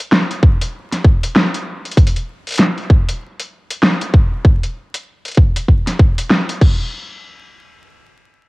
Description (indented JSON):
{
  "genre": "glitch hop",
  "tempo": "97 BPM",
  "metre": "4/4",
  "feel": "swing 60% on 16ths",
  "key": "none",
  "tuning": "none",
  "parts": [
    { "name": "dubstep drum kit", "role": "drums", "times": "0.0-6.8 s", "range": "crash cymbal, hi-hat, snare drum", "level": "-16 LUFS", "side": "equal", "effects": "small room ambience, cassette tape" },
    { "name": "electronic kick drum", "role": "drums", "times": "0.4-6.8 s", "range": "none", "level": "-11 LUFS", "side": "equal", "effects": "small room ambience, cassette tape" }
  ],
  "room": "light reverb, digital ambience",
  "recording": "home recording on cassette, vinyl crackle",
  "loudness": "-13 LUFS",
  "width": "side -23 dB against mid",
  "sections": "0.0-6.9 A section; 6.9-8.5 B section",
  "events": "none",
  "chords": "none"
}